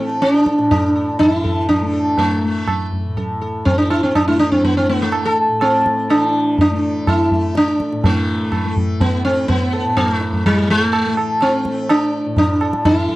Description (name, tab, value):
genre	indian classical, Hindustani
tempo	123 BPM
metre	3/4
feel	straight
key	A raga bhimpalasi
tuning	A4 = 440 Hz
part	sitar	melody	0.0-13.2 s	G3 to A4	-16 LUFS	equal	none
part	tanpura	drone	0.0-13.2 s	A2 to A3	-26 LUFS	left 2 dB	none
part	tabla	percussion	0.1-13.2 s	none	-20 LUFS	right 1 dB	none
room	light reverb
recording	dry, close 1970s-style studio recording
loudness	-14 LUFS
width	side -18 dB against mid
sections	0.0-8.0 A section; 8.0-13.2 B section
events	speeding up 0.0-13.2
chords	none